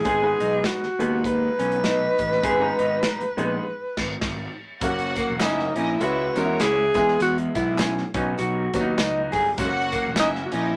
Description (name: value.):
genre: uptempo 1960s-style soul.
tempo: 101 BPM.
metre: 4/4.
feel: swing 59% on 8ths.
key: unclear.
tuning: A4 = 440 Hz.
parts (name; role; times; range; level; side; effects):
breathy tenor saxophone; melody; 0.0-10.8 s; D#4 to B4; -26 LUFS; equal; none.
electric guitar through a small old amp; riff; 0.0-10.7 s; A#3 to G#4; -29 LUFS; equal; none.
natural country drum kit; drums; 0.0-10.6 s; crash cymbal, hi-hat, kick drum, snare drum; -32 LUFS; equal; none.
bright upright piano; accompaniment; 0.1-10.6 s; F#3 to A#5; -31 LUFS; equal; none.
fuzz picked electric bass; bass; 0.1-10.7 s; E1 to E2; -31 LUFS; equal; overdrive.
warm symphonic violin section; second line; 4.8-10.7 s; C#4 to F#5; -32 LUFS; equal; none.
tambourine and handclaps; percussion; 4.8-10.6 s; none; -37 LUFS; equal; none.
room: light reverb.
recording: none.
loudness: -23 LUFS.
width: mono.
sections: 0.0-4.8 A section; 4.8-10.8 B section.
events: band accent 3.6-4.8.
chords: 0.1 G#m; 4.8 F#; 6.0 C#m; 6.9 E; 8.1 B; 9.6 F#.